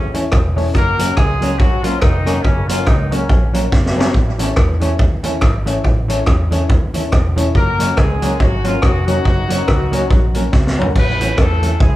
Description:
ska; 141 BPM; 4/4; swing 58% on 8ths; F# major; A4 = 440 Hz
clear horn section; melody; 0.0-3.5, 7.6-12.0 s; C#3 to B4; -21 LUFS; left 2 dB
vintage muted fingered electric bass; bass; 0.0-12.0 s; E1 to E2; -19 LUFS; equal
hollow-body jazz guitar; accompaniment; 0.1-11.7 s; E3 to C#4; -24 LUFS; right 3 dB; tape echo
warm upright piano; stabs; 0.1-10.9 s; C#4 to C#5; -24 LUFS; left 4 dB
vintage drum kit; drums; 0.1-11.9 s; crash cymbal, hi-hat, kick drum, rim click, snare drum, toms; -15 LUFS; equal
moderate large studio reverb, RT60 0.9 s; band playing live in one room; -13 LUFS; side -16 dB against mid
0.0-11.0 A section; 11.0-12.0 A section
drum fill 3.7-4.1, 10.5-11.0
0.0 A; 0.7 F#; 4.1 A; 7.6 F#; 11.0 A
0.33 | 0.75 1.17 1.60 2.02 | 2.45 2.87 3.30 3.72 | 4.15 4.57 5.00 5.42 | 5.85 6.27 6.70 7.12 | 7.55 7.98 8.40 8.83 | 9.25 9.68 10.10 10.53 | 10.95 11.38 11.81

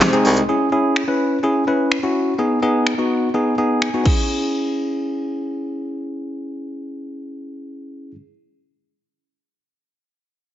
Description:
dance-pop; 126 BPM; 4/4; straight; C# minor; A4 = 439 Hz
barky tine electric piano; accompaniment; 0.0-8.1 s; G#3 to G#5; -19 LUFS; equal; sidechain pumping
pop drum kit; drums; 0.0-4.2 s; crash cymbal, finger snaps, handclaps, hi-hat, kick drum, snare drum; -21 LUFS; equal
moderate plate reverb, RT60 1.5 s, digital ambience; heavily compressed radio sound, multiband compression, nothing above 7.7 kHz; -17 LUFS; side -12 dB against mid
0.5-4.3 A section; 4.3-8.1 B section
tine electric piano fill 3.6-4.3
0.5 C#m; 2.4 G#m; 4.1 C#m
0.01 | 0.48 0.96 1.44 1.91 | 2.39 2.87 3.34 3.82 | 4.29 4.77 5.25 5.72 | 6.20 6.68 7.15 7.63

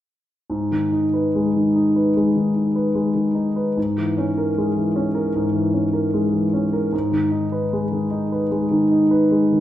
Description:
classical, romantic character piece for solo piano; 75 BPM; 4/4; rubato; G# minor; A4 = 439 Hz
dark concert grand piano; solo; 0.5-9.6 s; G#2 to B4; -18 LUFS; equal
wet large studio reverb, RT60 1.3 s; heard from further back in the room; -18 LUFS; side -12 dB against mid
0.5-9.6 A section
0.5 G#m; 3.8 A#m7b5/G#; 6.9 G#m
| 0.49 1.33 2.16 2.96 | 3.77 4.56 5.33 6.12 | 6.93 7.72 8.51 9.31

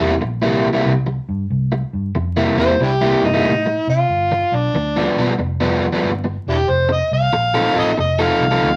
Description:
electric blues shuffle; 93 BPM; 4/4; swing 66% on 8ths; C mixolydian; A4 = 440 Hz
crunchy overdriven guitar; riff; 0.0-8.7 s; G2 to A4; -20 LUFS; equal
vintage muted fingered electric bass; bass; 0.0-8.8 s; E1 to C3; -24 LUFS; equal
overdriven harmonica; melody; 2.6-8.8 s; D4 to F5; -20 LUFS; equal
moderate club reverb, RT60 0.5 s; vinyl crackle; -18 LUFS; mono
0.0-8.8 A section
0.0 C7; 4.1 G7; 6.7 F7
0.20 0.85 | 1.50 2.15 2.80 3.44 | 4.09 4.74 5.39 6.03 | 6.68 7.33 7.97 8.62

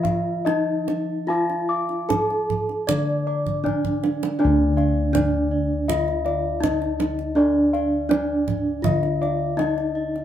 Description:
Javanese gamelan; 71-81 BPM; 4/4; straight; A4 = 439 Hz
gamelan-type bronze metallophone; melody; 0.0-10.2 s; D4 to D5; -26 LUFS; right 1 dB
gamelan-type bossed gongs; arpeggios; 0.0-10.0 s; D5 to D6; -27 LUFS; left 6 dB
gamelan-type bronze metallophone; arpeggios; 0.0-10.2 s; D5 to D6; -31 LUFS; right 5 dB
gamelan-type bossed gongs; bass; 0.0-10.2 s; D2 to D5; -24 LUFS; left 1 dB
kendang; percussion; 0.0-10.2 s; -26 LUFS; right 5 dB
moderate large studio reverb, RT60 0.9 s; band playing live in one room; -20 LUFS; side -10 dB against mid
0.0-4.4 A section; 4.4-10.2 B section
drum fill 3.5-4.4
0.47 | 1.29 2.10 2.88 3.65 | 4.40 5.14 5.88 6.62 | 7.36 8.10 8.84 9.58

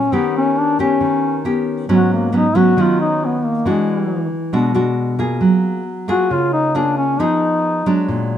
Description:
bossa nova; 136 BPM; 4/4; straight; Eb minor; A4 = 439 Hz
mellow duduk; melody; 0.0-8.1 s; G#3 to Gb4; -17 LUFS; left 2 dB; plate reverb
nylon-string guitar; accompaniment; 0.0-8.4 s; Ab2 to G#4; -17 LUFS; right 1 dB
moderate studio reverb, RT60 0.7 s; -14 LUFS; side -10 dB against mid
0.0-8.4 A section
duduk solo 0.0-8.4
0.1 Ebaug7; 1.9 Abm7; 3.7 E9; 5.4 Gbmaj9; 7.2 Fm7b5
| 0.12 0.56 1.00 1.44 | 1.89 2.33 2.77 3.21 | 3.65 4.09 4.54 4.98 | 5.42 5.86 6.30 6.74 | 7.18 7.63 8.07

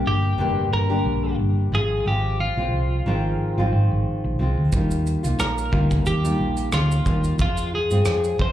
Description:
acoustic pop; 90 BPM; 4/4; swing 55% on 16ths; Eb major; A4 = 440 Hz
nylon-string guitar; accompaniment; 0.0-8.5 s; F2 to G4; -26 LUFS; left 1 dB; plate reverb, slapback echo
hollow-body short-scale fingered electric bass; bass; 0.0-8.5 s; F1 to Ab2; -22 LUFS; equal
twelve-string electric guitar; melody; 0.1-8.5 s; F4 to C5; -26 LUFS; equal; plate reverb, slapback echo, ping-pong delay
loose indie drum kit; drums; 4.7-8.5 s; kick drum, rim click, shaker; -26 LUFS; equal
light reverb; live gig heard through the venue's PA, club reverb; -19 LUFS; side -12 dB against mid
0.0-8.5 A section
0.0 Gm; 1.7 Ab6; 4.7 Ebadd9; 7.4 Fm
0.05 0.72 1.39 | 2.06 2.72 3.39 4.06 | 4.72 5.39 6.06 6.72 | 7.39 8.06

